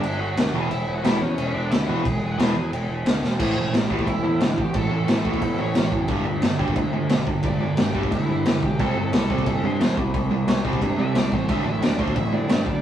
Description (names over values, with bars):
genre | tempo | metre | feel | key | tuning
punk rock | 178 BPM | 4/4 | straight | unclear | A4 = 440 Hz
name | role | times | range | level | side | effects
smooth overdriven lead guitar | melody | 0.0-12.8 s | C#4 to G#5 | -30 LUFS | equal | none
growling picked electric bass | bass | 0.0-12.8 s | E1 to C3 | -26 LUFS | equal | overdrive
raw garage drum kit | drums | 0.0-12.7 s | crash cymbal, kick drum, snare drum | -24 LUFS | equal | none
crunchy overdriven guitar | riff | 0.5-12.8 s | G2 to E4 | -30 LUFS | left 6 dB | none
sludgy distorted guitar | riff | 0.5-12.8 s | E2 to D4 | -25 LUFS | right 4 dB | overdrive
room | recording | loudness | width
light reverb | rough rehearsal-room recording, small room ambience | -20 LUFS | side -10 dB against mid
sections
0.0-3.4 A section; 3.4-12.8 B section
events
drum fill 3.2; lead electric guitar solo 3.4-12.8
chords
0.0 G5; 0.5 E; 3.4 A5; 6.1 G5; 8.8 C5; 11.5 D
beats
0.03 0.37 | 0.70 1.04 1.38 1.71 | 2.05 2.39 2.73 3.06 | 3.40 3.74 4.07 4.41 | 4.75 5.08 5.42 5.76 | 6.10 6.43 6.77 7.11 | 7.45 7.78 8.12 8.46 | 8.79 9.13 9.47 9.80 | 10.14 10.48 10.82 11.15 | 11.49 11.83 12.16 12.50